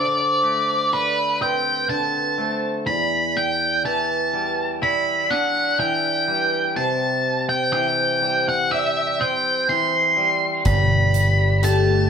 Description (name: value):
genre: post-rock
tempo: 62 BPM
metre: 4/4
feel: straight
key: unclear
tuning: A4 = 436 Hz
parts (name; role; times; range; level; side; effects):
- octave-fuzz lead guitar; melody; 0.0-12.1 s; B4 to C6; -20 LUFS; equal; distortion
- twangy electric guitar; arpeggios; 0.0-12.1 s; E2 to G4; -27 LUFS; left 4 dB; none
- vibraphone with hard mallets; arpeggios; 0.0-12.1 s; A4 to D5; -27 LUFS; right 6 dB; none
- icy glass pad; sustained chords; 11.3-12.1 s; A3 to D5; -24 LUFS; left 4 dB; chorus, built-in reverb
- growling picked electric bass; bass; 10.7-12.1 s; G1; -18 LUFS; equal; overdrive
- huge arena drum kit; drums; 10.7-11.9 s; hi-hat, kick drum; -26 LUFS; equal; none
room: wet stone room reverb, RT60 0.9 s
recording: band playing live in one room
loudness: -18 LUFS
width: side -7 dB against mid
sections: 0.0-12.1 A section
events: none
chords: 0.0 D5; 2.9 Em7; 6.8 C; 10.7 Gsus2